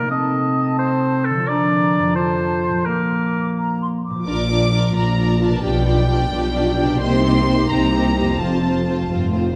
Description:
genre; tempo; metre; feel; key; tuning
classical, dramatic, fast romantic movement for symphony orchestra; 87 BPM (dotted quarters); 6/8; straight; Bb major; A4 = 441 Hz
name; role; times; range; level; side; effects
clear clarinet; second line; 0.0-4.0 s; Bb3 to F4; -25 LUFS; equal; none
warm oboe; second line; 0.0-3.6 s; A4 to Eb5; -24 LUFS; equal; none
concert harp; arpeggios; 0.0-9.6 s; F2 to D5; -26 LUFS; equal; none
hollow flute section; second line; 0.1-4.3 s; A5 to D6; -31 LUFS; equal; none
rich symphonic violin section; melody; 4.3-9.1 s; G5 to D6; -28 LUFS; equal; none
warm symphonic violin section; second line; 4.3-9.6 s; F4 to D5; -29 LUFS; equal; none
dark studio viola section; accompaniment; 4.3-9.5 s; Bb3 to F4; -24 LUFS; equal; none
rich symphonic double bass section; bass; 4.3-9.6 s; F1 to C2; -24 LUFS; equal; none
warm symphonic cello section; bass; 4.3-9.6 s; F2 to C3; -25 LUFS; equal; none
room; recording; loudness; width
wet scoring stage reverb, RT60 1.7 s; none; -19 LUFS; mono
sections
0.0-4.3 A section; 4.3-9.6 A section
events
none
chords
0.1 Adim/C; 1.5 Bb/D; 2.2 F; 2.9 Bb; 5.6 G7/B; 7.0 Cm7; 8.4 F

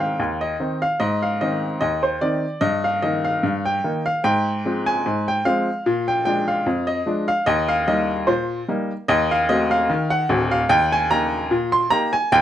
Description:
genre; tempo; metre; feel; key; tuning
ragtime piano; 74 BPM; 2/4; swing 55% on 16ths; Eb major; A4 = 443 Hz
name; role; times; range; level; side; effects
clear upright piano; solo; 0.0-12.4 s; D1 to C6; -18 LUFS; equal; none
room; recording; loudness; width
moderate studio reverb, RT60 0.6 s; dark, warm production; -18 LUFS; side -11 dB against mid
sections
0.0-12.4 A section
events
none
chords
0.0 Ab; 2.6 Eb/G; 4.2 Fm/Ab; 5.8 Bb7; 7.5 Eb; 9.1 Ebdim7; 10.7 Eb

